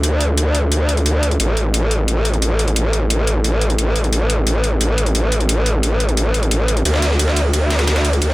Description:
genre	dark technical drum and bass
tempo	176 BPM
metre	4/4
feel	straight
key	unclear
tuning	A4 = 439 Hz
part	growl bass	bass	0.0-8.3 s	A1 to D2	-15 LUFS	equal	chorus
part	electronic hi-hat	drums	0.0-8.3 s	none	-22 LUFS	left 1 dB	none
part	breakbeat sampler-style drum kit	drums	6.9-8.3 s	ride cymbal, snare drum	-22 LUFS	right 1 dB	overdrive, high-pass filter on cymbals, high-pass filter on snare, high-pass filter on room
room	little or no reverb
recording	none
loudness	-14 LUFS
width	side -19 dB against mid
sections	0.0-8.3 A section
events	none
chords	none

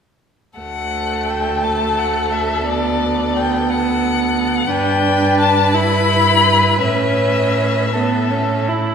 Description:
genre	classical, slow romantic movement for string quartet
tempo	58 BPM (dotted quarters)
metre	6/8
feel	uneven beats, rubato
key	D major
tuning	A4 = 441 Hz
part	rich violin	melody	0.6-8.7 s	D5 to B5	-18 LUFS	left 5 dB	none
part	rich violin	second line	0.6-8.9 s	A4 to B4	-22 LUFS	left 3 dB	none
part	clear viola	accompaniment	0.6-8.9 s	A3 to E4	-20 LUFS	right 4 dB	none
part	clear cello	bass	0.6-8.8 s	D2 to A2	-22 LUFS	right 2 dB	none
room	wet scoring stage reverb, RT60 1.5 s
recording	recorded in a church or concert hall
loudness	-14 LUFS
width	side -7 dB against mid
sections	0.6-8.9 A section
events	none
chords	0.6 D; 2.7 Bm7/D; 4.7 G; 5.8 Em/G; 6.8 A

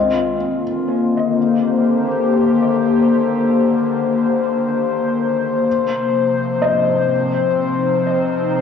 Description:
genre	ambient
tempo	free time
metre	none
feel	none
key	C minor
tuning	A4 = 441 Hz
part	airy breathy pad	sustained chords	0.0-8.6 s	C3 to C5	-15 LUFS	left 3 dB	chorus
part	felt-muted upright piano	arpeggios	0.0-8.6 s	C5 to Eb5	-23 LUFS	left 3 dB	tape echo
room	wet spring reverb, RT60 2.3 s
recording	home recording on cassette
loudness	-15 LUFS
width	side -7 dB against mid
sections	0.0-8.6 A section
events	none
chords	0.0 Cm9; 5.7 Ab6/C (rootless)

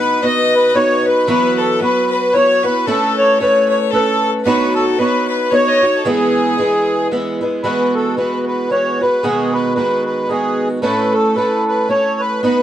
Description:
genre	celtic folk, Celtic waltz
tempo	113 BPM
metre	3/4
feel	swing 57% on 8ths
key	E major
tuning	A4 = 440 Hz
part	accordion	melody	0.0-12.6 s	G#4 to D#5	-16 LUFS	equal	light tremolo tuning
part	clear fiddle	second line	0.0-7.1 s	G#4 to D#5	-21 LUFS	left 7 dB	none
part	fingerpicked twelve-string acoustic guitar	accompaniment	0.0-12.6 s	A2 to C#5	-17 LUFS	right 1 dB	none
room	moderate studio reverb, RT60 0.8 s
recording	dark, warm production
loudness	-13 LUFS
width	side -11 dB against mid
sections	0.0-7.6 A section; 7.6-12.6 A section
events	none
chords	0.0 B; 1.3 Esus2; 2.9 Aadd9; 4.5 Badd9; 6.0 E; 7.6 Eadd9; 9.2 B6; 10.8 A

